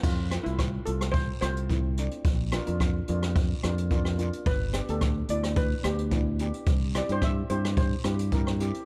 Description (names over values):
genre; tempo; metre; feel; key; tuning
calypso; 108 BPM; 4/4; straight; F major; A4 = 443 Hz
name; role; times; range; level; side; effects
steel pan; melody; 0.0-8.0 s; E4 to E5; -36 LUFS; equal; none
steel pan; accompaniment; 0.0-8.8 s; A3 to Bb4; -38 LUFS; equal; none
modern bright fingered electric bass; bass; 0.0-8.7 s; G1 to G2; -31 LUFS; equal; none
jazz brush drum kit; drums; 0.0-8.8 s; crash cymbal, hi-hat, kick drum, rim click; -31 LUFS; equal; none
guiro; percussion; 0.0-8.8 s; none; -49 LUFS; equal; none
room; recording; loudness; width
little or no reverb; dark, warm production; -27 LUFS; mono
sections
0.0-8.8 A section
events
steel pan solo 0.0-8.8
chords
0.0 F; 2.3 Bb; 4.5 G; 6.7 C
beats
| 0.04 0.60 1.15 1.70 | 2.26 2.81 3.36 3.92 | 4.47 5.02 5.58 6.13 | 6.68 7.23 7.78 8.34